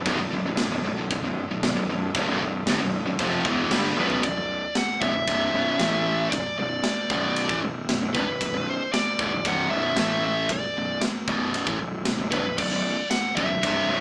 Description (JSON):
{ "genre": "heavy metal", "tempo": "115 BPM", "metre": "4/4", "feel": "straight", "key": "B phrygian", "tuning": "A4 = 442 Hz", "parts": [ { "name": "dark studio string section", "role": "sustained chords", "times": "0.0-4.2 s", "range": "F#3 to D5", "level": "-42 LUFS", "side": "equal", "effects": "none" }, { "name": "cranked stack guitar", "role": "riff", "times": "0.0-4.2 s", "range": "B1 to G3", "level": "-35 LUFS", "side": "equal", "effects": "none" }, { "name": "distorted electric guitar", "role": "riff", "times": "0.0-14.0 s", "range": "B1 to A3", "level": "-31 LUFS", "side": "equal", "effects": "overdrive" }, { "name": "high-gain distorted guitar", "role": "riff", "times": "0.0-4.2, 12.6-14.0 s", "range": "B1 to G3", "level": "-34 LUFS", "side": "equal", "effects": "distortion" }, { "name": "fuzz fingered electric bass", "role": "bass", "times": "0.0-14.0 s", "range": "B0 to A1", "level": "-32 LUFS", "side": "equal", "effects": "overdrive" }, { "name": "tight metal drum kit", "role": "drums", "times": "0.1-13.8 s", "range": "crash cymbal, kick drum, ride cymbal, snare drum, toms", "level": "-31 LUFS", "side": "equal", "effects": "none" }, { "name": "high-gain lead guitar", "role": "melody", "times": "4.0-14.0 s", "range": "B4 to F#5", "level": "-29 LUFS", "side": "equal", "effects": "distortion" } ], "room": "light reverb", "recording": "band playing live in one room, small speaker sound", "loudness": "-25 LUFS", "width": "mono", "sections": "0.0-4.2 A section; 4.2-14.0 B section", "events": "drum fill 4.0", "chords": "0.0 Bm; 5.8 A5; 6.3 Bm; 10.0 A5; 10.5 Bm", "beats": "| 0.06 0.58 1.10 1.62 | 2.15 2.67 3.19 3.71 | 4.23 4.75 5.27 5.79 | 6.31 6.83 7.36 7.88 | 8.40 8.92 9.44 9.97 | 10.49 11.01 11.54 12.06 | 12.58 13.11 13.63" }